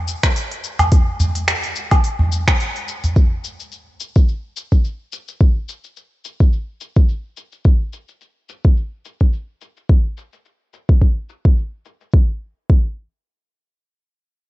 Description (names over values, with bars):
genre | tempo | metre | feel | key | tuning
organic downtempo | 107 BPM | 4/4 | swing 55% on 16ths | none | none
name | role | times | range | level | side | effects
organic electronic drum kit | drums | 0.1-12.1 s | finger snaps, hi-hat, shaker, woodblock | -22 LUFS | equal | overdrive, low-pass filter on hats, low-pass filter on perc, low-pass filter on snare, low-pass filter on room
electronic kick drum | drums | 0.2-12.9 s | none | -13 LUFS | equal | overdrive
udu | percussion | 0.8-3.1 s | none | -20 LUFS | equal | none
room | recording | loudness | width
little or no reverb | nothing above 8.0 kHz | -16 LUFS | side -18 dB against mid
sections
0.0-12.1 A section; 12.1-14.4 B section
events
none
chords
none